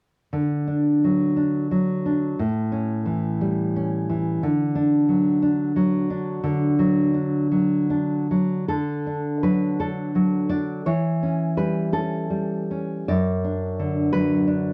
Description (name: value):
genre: romantic piece for solo classical guitar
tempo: 48-60 BPM (dotted quarters)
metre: 6/8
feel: rubato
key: D major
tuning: A4 = 440 Hz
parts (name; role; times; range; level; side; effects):
- nylon-string guitar; solo; 0.3-14.7 s; F#2 to D5; -23 LUFS; equal; none
room: light reverb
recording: dry, close 1970s-style studio recording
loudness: -23 LUFS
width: mono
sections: 0.3-8.7 A section; 8.7-14.7 B section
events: none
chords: 0.3 D; 2.4 A7; 4.4 D; 10.9 A7/E; 13.1 D/F#